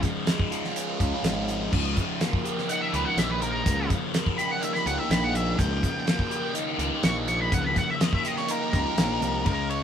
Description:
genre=psychedelic rock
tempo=124 BPM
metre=4/4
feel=straight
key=unclear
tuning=A4 = 443 Hz
part: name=thick fuzz guitar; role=riff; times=0.0-9.8 s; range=Db3 to G4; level=-28 LUFS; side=equal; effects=distortion, phaser
part: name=damped 70s drum kit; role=drums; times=0.0-9.8 s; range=crash cymbal, hi-hat, kick drum, ride cymbal, snare drum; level=-26 LUFS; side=equal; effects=none
part: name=fuzz picked electric bass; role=bass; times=1.0-9.8 s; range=Ab1 to Db2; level=-30 LUFS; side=equal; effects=overdrive
part: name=octave-fuzz lead guitar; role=melody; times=2.7-9.8 s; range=Bb4 to Db6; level=-29 LUFS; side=equal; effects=wah, distortion
room=light reverb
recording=band playing live in one room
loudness=-23 LUFS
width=side -8 dB against mid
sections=0.0-9.5 A section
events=lead electric guitar solo 0.0-9.5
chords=0.0 Db; 1.7 Ebadd9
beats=0.27 0.76 1.24 | 1.72 2.21 2.69 3.17 | 3.66 4.14 4.62 5.11 | 5.59 6.08 6.56 7.04 | 7.52 8.01 8.49 8.97 | 9.46

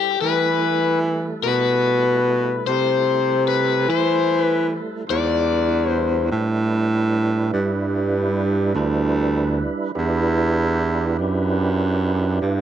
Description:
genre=slow blues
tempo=49 BPM (dotted quarters)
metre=12/8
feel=straight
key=E minor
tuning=A4 = 440 Hz
part: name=crunchy overdriven guitar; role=melody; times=0.0-6.3 s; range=G4 to D5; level=-21 LUFS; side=left 10 dB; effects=spring reverb, slapback echo
part: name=tonewheel organ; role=sustained chords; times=0.0-12.6 s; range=G3 to C5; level=-26 LUFS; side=right 3 dB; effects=slow rotary speaker, overdrive, chorus vibrato
part: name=breathy baritone saxophone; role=bass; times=0.2-12.6 s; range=D2 to E3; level=-20 LUFS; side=right 2 dB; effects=none
room=light reverb, small room ambience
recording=none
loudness=-18 LUFS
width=side -10 dB against mid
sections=0.0-12.6 A section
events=none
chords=0.0 Am7; 5.1 Em7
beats=| 0.21 1.43 2.65 3.87 | 5.09 6.31 7.53 8.74 | 9.96 11.18 12.40

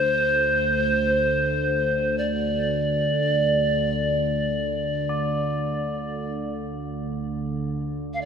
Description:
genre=world meditative, free-time meditation music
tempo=free time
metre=none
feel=none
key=unclear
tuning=A4 = 439 Hz
part: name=breathy bright pan flute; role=melody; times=0.0-8.3 s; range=C5 to F5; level=-23 LUFS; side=left 1 dB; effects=analog delay
part: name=deep dark ambient pad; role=drone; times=0.0-8.3 s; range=D2 to D3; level=-27 LUFS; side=right 2 dB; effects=chorus, built-in reverb
part: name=tubular bells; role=texture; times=0.0-8.3 s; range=C5 to D5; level=-36 LUFS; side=left 2 dB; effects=none
room=wet plate reverb, RT60 2.3 s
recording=dreamy mix soaked in reverb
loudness=-22 LUFS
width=side -7 dB against mid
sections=0.0-8.3 A section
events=none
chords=none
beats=free time

